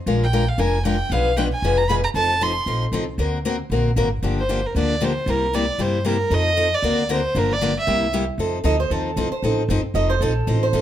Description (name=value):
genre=acoustic string swing (jazz manouche)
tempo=231 BPM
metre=4/4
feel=swing 57% on 8ths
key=F mixolydian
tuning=A4 = 441 Hz
part: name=picked steel-string acoustic guitar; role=accompaniment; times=0.1-10.8 s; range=B2 to B4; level=-22 LUFS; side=left 3 dB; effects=none
part: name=upright bass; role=bass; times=0.1-10.8 s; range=F1 to G2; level=-23 LUFS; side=equal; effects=none
part: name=warm violin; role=melody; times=0.2-8.1 s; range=Bb4 to C6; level=-22 LUFS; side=right 2 dB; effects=none
part: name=picked old ladder-braced acoustic guitar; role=second line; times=8.7-10.8 s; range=A4 to Eb5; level=-24 LUFS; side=right 3 dB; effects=none
room=moderate club reverb, RT60 0.9 s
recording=none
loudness=-18 LUFS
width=side -11 dB against mid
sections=0.0-8.4 A section; 8.4-10.8 B section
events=steel-string acoustic guitar solo 8.4-10.8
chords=0.1 Bb7; 1.1 Bdim7; 2.1 F7; 3.2 Daug7; 4.2 Gm7; 5.3 C7; 6.3 F7; 6.8 Daug7; 7.4 Gm7; 7.9 C7; 8.4 F7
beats=| 0.07 0.33 0.59 0.85 | 1.11 1.37 1.63 1.89 | 2.15 2.41 2.67 2.93 | 3.19 3.45 3.71 3.97 | 4.23 4.49 4.75 5.01 | 5.27 5.53 5.79 6.05 | 6.31 6.57 6.83 7.09 | 7.35 7.61 7.87 8.13 | 8.39 8.65 8.91 9.17 | 9.43 9.69 9.95 10.21 | 10.47 10.73